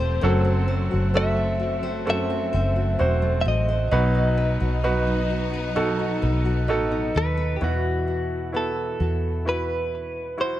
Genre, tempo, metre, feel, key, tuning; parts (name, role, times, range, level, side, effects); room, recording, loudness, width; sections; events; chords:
pop ballad; 65 BPM; 4/4; straight; A4 = 440 Hz
direct-recorded clean electric guitar; melody; 0.0-10.6 s; F#4 to E5; -27 LUFS; equal; wide subtle chorus
clear concert grand piano; accompaniment; 0.0-10.6 s; B2 to C5; -26 LUFS; right 2 dB
warm symphonic string section; sustained chords; 0.0-7.6 s; F3 to D#4; -30 LUFS; equal
nylon-string guitar; arpeggios; 0.0-10.6 s; F#2 to C5; -32 LUFS; left 5 dB
vintage muted fingered electric bass; bass; 0.0-10.6 s; E1 to E2; -24 LUFS; equal
light reverb, small room reverb; dark, warm production; -21 LUFS; side -13 dB against mid
0.0-7.6 A section; 7.6-10.6 B section
0.2 F#dim; 3.9 B; 7.6 Esus2